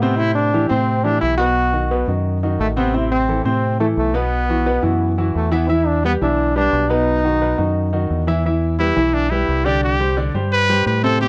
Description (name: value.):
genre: latin.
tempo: 174 BPM.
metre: 4/4.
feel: straight.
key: E minor.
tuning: A4 = 439 Hz.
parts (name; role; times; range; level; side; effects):
brilliant trombone; melody; 0.0-8.1 s; A3 to F#4; -22 LUFS; equal; none.
clear concert grand piano; accompaniment; 0.0-11.3 s; B2 to E5; -23 LUFS; equal; none.
deep dub fingered electric bass; bass; 0.0-11.3 s; A1 to A2; -23 LUFS; equal; none.
bright trumpet; melody; 8.8-11.3 s; D4 to B4; -20 LUFS; equal; none.
room: light reverb.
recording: dry, close 1970s-style studio recording.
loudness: -18 LUFS.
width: mono.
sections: 0.0-8.4 A section; 8.4-11.3 B section.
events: trumpet solo 8.4-11.3.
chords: 0.2 Am7; 1.6 B7; 2.9 Am; 4.3 Bsus4; 5.7 Em7; 7.1 B; 8.4 Em7; 9.8 Csus2.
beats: | 0.19 0.54 0.88 1.22 | 1.57 1.91 2.26 2.60 | 2.94 3.29 3.63 3.97 | 4.32 4.66 5.01 5.35 | 5.69 6.04 6.38 6.73 | 7.07 7.41 7.76 8.10 | 8.45 8.79 9.14 9.48 | 9.82 10.17 10.52 10.86 | 11.20.